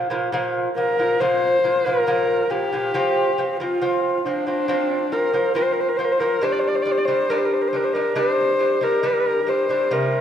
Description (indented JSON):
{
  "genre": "mongolian traditional, Mongolian folk",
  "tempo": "69 BPM",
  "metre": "4/4",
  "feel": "straight",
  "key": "unclear",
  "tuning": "A4 = 444 Hz",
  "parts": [
    { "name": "lute", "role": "arpeggios", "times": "0.0-10.2 s", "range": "Bb2 to D4", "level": "-22 LUFS", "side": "right 1 dB", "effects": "none" },
    { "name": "dark horsehead fiddle", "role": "melody", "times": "0.8-10.2 s", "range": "D4 to D5", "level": "-20 LUFS", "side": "left 1 dB", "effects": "none" }
  ],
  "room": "moderate scoring stage reverb, RT60 1.8 s",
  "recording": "none",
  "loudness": "-18 LUFS",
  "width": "side -9 dB against mid",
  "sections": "0.0-10.2 A section",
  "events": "none",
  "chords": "0.0 Bb5; 2.9 F5; 6.4 G5"
}